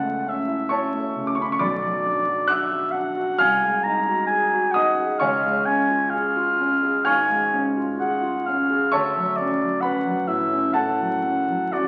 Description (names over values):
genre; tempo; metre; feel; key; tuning
classical, romantic duo for oboe and grand piano; 66 BPM; 4/4; rubato; unclear; A4 = 440 Hz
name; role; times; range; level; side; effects
mellow oboe; melody; 0.0-11.9 s; D5 to A#5; -25 LUFS; equal; none
dark grand piano; accompaniment; 0.0-11.9 s; B1 to F#6; -25 LUFS; equal; none
room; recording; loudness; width
wet recital hall reverb, RT60 1.5 s; very old 78 rpm record, vinyl crackle, nothing above 10.4 kHz; -22 LUFS; mono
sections
0.0-11.9 A section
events
none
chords
0.0 A/C#; 1.6 Bm; 3.4 G#7/B#; 5.2 C#; 8.9 Dmaj7